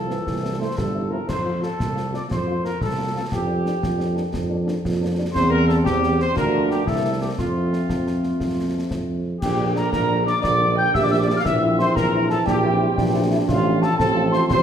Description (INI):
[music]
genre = military-style march for wind band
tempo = 118 BPM (dotted quarters)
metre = 6/8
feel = straight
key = F major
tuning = A4 = 441 Hz
[part]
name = dark trumpet section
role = melody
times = 0.0-14.6 s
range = F4 to G5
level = -24 LUFS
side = equal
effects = none
[part]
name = warm euphonium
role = second line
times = 0.0-1.2, 9.4-14.6 s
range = E3 to G4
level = -27 LUFS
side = right 2 dB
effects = none
[part]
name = mellow tuba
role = bass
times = 0.0-14.6 s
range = G1 to F2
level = -23 LUFS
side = right 2 dB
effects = none
[part]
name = mellow French horn section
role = accompaniment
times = 0.1-14.4 s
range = F3 to F4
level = -28 LUFS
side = left 3 dB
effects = none
[part]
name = concert snare drum, concert bass drum and clash cymbals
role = drums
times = 0.1-14.6 s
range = none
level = -29 LUFS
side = left 1 dB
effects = none
[part]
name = mellow hollow piccolo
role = second line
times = 9.4-14.6 s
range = F5 to G6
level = -24 LUFS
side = left 2 dB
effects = none
[part]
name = clear trombone section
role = sustained chords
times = 9.4-14.6 s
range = D3 to C4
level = -30 LUFS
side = right 1 dB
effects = none
[sound]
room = wet recital hall reverb, RT60 1.6 s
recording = recorded in a church or concert hall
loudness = -19 LUFS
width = side -8 dB against mid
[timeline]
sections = 0.0-9.4 A section; 9.4-14.6 B section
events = none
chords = 0.3 C; 1.3 F; 3.3 Gm7/F; 5.3 C/E; 6.4 Bb/D; 6.9 C7; 7.4 F; 9.4 Gm/Bb; 11.4 C7/Bb; 13.5 F/A